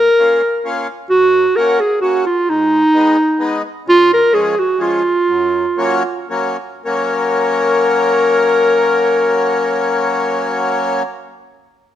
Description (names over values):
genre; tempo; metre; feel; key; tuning
alpine folk, alpine dance band; 105-131 BPM; 3/4; swing 54% on 8ths; F# major; A4 = 440 Hz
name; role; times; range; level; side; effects
mellow clarinet; melody; 0.0-11.0 s; D#4 to A#4; -13 LUFS; equal; none
accordion; accompaniment; 0.0-11.0 s; F#2 to F#4; -19 LUFS; left 1 dB; none
room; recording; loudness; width
moderate recital hall reverb, RT60 1.5 s; none; -12 LUFS; side -11 dB against mid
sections
0.0-6.9 A section; 6.9-10.3 B section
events
slowing down 3.9-6.9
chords
0.0 A#m; 1.1 F#; 2.5 G#m; 3.9 C#; 5.3 F#